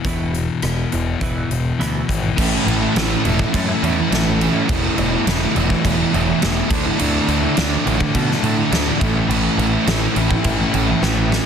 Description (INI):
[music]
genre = quiet-loud alternative rock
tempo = 104 BPM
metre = 4/4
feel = straight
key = A major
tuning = A4 = 440 Hz
[part]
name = twelve-string electric guitar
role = arpeggios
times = 0.0-2.3 s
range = E2 to E3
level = -28 LUFS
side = right 5 dB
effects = lush chorus
[part]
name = thick fuzz guitar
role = riff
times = 0.0-11.5 s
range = E2 to E4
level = -22 LUFS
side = left 8 dB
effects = distortion
[part]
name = huge arena drum kit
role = drums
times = 0.0-11.5 s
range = crash cymbal, hi-hat, kick drum, rim click, snare drum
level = -22 LUFS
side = right 1 dB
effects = none
[part]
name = growling picked electric bass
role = bass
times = 0.1-11.4 s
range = E1 to B2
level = -22 LUFS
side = equal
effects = overdrive
[part]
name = crunchy overdriven guitar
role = riff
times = 2.4-11.5 s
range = E2 to D4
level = -24 LUFS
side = right 1 dB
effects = none
[part]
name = thick fuzz guitar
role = riff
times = 2.4-11.5 s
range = A2 to E4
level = -22 LUFS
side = right 11 dB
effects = distortion
[sound]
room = small room ambience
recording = dense, heavily limited modern master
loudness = -16 LUFS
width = side -7 dB against mid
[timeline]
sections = 0.0-2.4 A section; 2.4-11.5 B section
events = drum fill 11.0-11.5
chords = 0.0 E5; 2.4 A; 4.7 Esus4; 6.7 Dsus2; 9.0 A